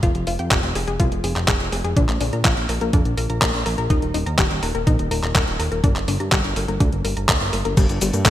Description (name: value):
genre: italo disco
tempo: 124 BPM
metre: 4/4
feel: straight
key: unclear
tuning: A4 = 435 Hz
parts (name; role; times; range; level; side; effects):
- analog pluck; arpeggios; 0.0-8.3 s; G3 to Bb5; -26 LUFS; left 3 dB; chorus, ping-pong delay
- fat analog bass; bass; 0.0-8.3 s; Eb1 to Bb2; -23 LUFS; equal; tube saturation
- detuned 8-bit digital drum machine; drums; 0.0-8.3 s; cabasa, crash cymbal, handclaps, hi-hat; -23 LUFS; equal; gated reverb
- electronic kick drum; drums; 0.0-8.3 s; none; -20 LUFS; equal; none
room: light reverb, digital ambience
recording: bright 1980s-style digital production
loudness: -18 LUFS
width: side -13 dB against mid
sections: 0.0-7.8 A section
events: none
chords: 0.0 Fmadd9; 2.0 Bb; 3.9 Eb5; 5.8 Gm